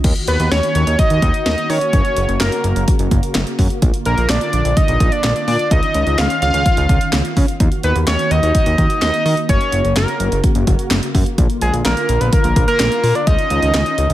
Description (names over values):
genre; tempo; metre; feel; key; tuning
synth-pop; 127 BPM; 4/4; straight; Eb minor; A4 = 444 Hz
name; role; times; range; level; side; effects
warm analog pad; sustained chords; 0.0-14.1 s; Db3 to Gb4; -24 LUFS; equal; chorus
fat analog bass; bass; 0.0-14.1 s; Gb1 to Eb3; -18 LUFS; equal; none
house drum kit; drums; 0.0-14.1 s; crash cymbal, handclaps, hi-hat, kick drum, snare drum; -17 LUFS; equal; none
fat analog lead; melody; 0.3-14.1 s; Ab4 to F5; -18 LUFS; equal; chorus, tape echo
room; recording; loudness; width
little or no reverb; none; -13 LUFS; side -14 dB against mid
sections
0.0-14.1 A section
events
none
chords
0.0 Ebm; 1.9 Gb; 3.8 Bb; 5.7 Dbadd9; 7.6 Ebm; 9.5 Gb; 11.4 Bb; 13.3 Dbadd9